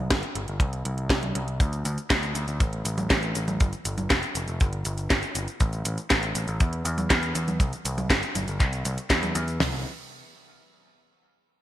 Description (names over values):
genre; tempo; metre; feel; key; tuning
italo disco; 120 BPM; 4/4; straight; C major; A4 = 436 Hz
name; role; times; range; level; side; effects
overdriven picked electric bass; bass; 0.0-9.8 s; F1 to E2; -29 LUFS; equal; tape echo
damped 70s drum kit; drums; 0.1-9.7 s; hi-hat, kick drum, snare drum, toms; -24 LUFS; equal; small room ambience, gated reverb
house drum kit; drums; 0.1-9.6 s; cabasa, congas, handclaps, hi-hat, snare drum; -26 LUFS; equal; small room ambience, gated reverb
room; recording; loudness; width
studio reverb; none; -24 LUFS; side -13 dB against mid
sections
0.0-9.6 A section; 9.6-11.6 B section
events
none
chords
none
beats
0.10 0.60 1.10 | 1.60 2.10 2.60 3.10 | 3.60 4.10 4.60 5.10 | 5.60 6.10 6.60 7.10 | 7.60 8.10 8.60 9.10 | 9.60